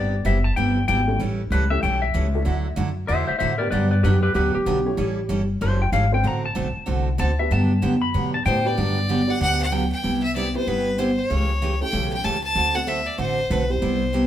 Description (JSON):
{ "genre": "country, western swing", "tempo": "190 BPM", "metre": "4/4", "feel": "swing 62% on 8ths", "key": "G major", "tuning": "A4 = 440 Hz", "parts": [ { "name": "clean lap steel guitar", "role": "second line", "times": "0.0-8.8 s", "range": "G4 to B5", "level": "-25 LUFS", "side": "left 3 dB", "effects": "none" }, { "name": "picked steel-string acoustic guitar", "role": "accompaniment", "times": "0.0-14.3 s", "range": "C3 to A4", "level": "-26 LUFS", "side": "right 2 dB", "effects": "none" }, { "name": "upright bass", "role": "bass", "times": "0.0-14.3 s", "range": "F#1 to B2", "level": "-23 LUFS", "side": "equal", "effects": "none" }, { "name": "honky-tonk upright piano", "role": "accompaniment", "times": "1.1-13.8 s", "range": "G3 to D5", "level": "-30 LUFS", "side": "equal", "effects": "none" }, { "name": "clear fiddle", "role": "melody", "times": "8.5-14.3 s", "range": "B4 to A5", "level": "-24 LUFS", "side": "left 1 dB", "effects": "none" } ], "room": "moderate studio reverb, RT60 1.0 s", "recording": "band playing live in one room", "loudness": "-19 LUFS", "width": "side -11 dB against mid", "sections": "0.0-8.8 A section; 8.8-14.3 B section", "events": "electric slide guitar solo 0.0-8.8", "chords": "0.0 Cmaj7; 1.2 A7; 2.5 Dadd9; 3.7 Gmaj7; 5.0 A7; 6.2 D7; 7.5 Gmaj7; 10.0 Cmaj7; 11.3 A7/C#; 12.6 D7" }